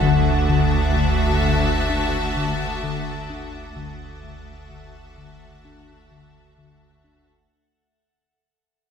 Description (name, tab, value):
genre	cinematic, suspense film score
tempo	64 BPM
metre	4/4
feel	straight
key	unclear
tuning	A4 = 440 Hz
part	rich studio violin section	melody	0.0-7.3 s	A5	-31 LUFS	left 3 dB	none
part	clear studio violin section	second line	0.0-7.3 s	E5	-30 LUFS	equal	none
part	rich studio viola section	accompaniment	0.0-7.3 s	F#4	-32 LUFS	equal	none
part	icy glass pad	sustained chords	0.0-7.5 s	A4 to F#5	-34 LUFS	right 1 dB	chorus, built-in reverb
part	round analog bass	riff	0.0-7.3 s	D3 to D4	-24 LUFS	left 7 dB	none
part	clear studio cello section	bass	0.0-7.3 s	D2	-29 LUFS	right 2 dB	none
part	clear studio double bass section	bass	0.0-7.3 s	D2	-25 LUFS	right 2 dB	none
part	punchy sub bass	drone	0.0-7.5 s	F#1	-30 LUFS	equal	none
part	rich studio violin section	texture	0.0-7.0 s	D6 to A6	-35 LUFS	left 5 dB	none
part	vibraphone with medium hard mallets	texture	0.0-7.5 s	E5 to F#5	-31 LUFS	right 5 dB	none
room	moderate scoring stage reverb, RT60 1.6 s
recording	minimal, uncompressed stereo recording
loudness	-18 LUFS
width	side -7 dB against mid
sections	0.0-7.5 A section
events	fade-out 0.0-7.5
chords	0.0 Dadd9/F#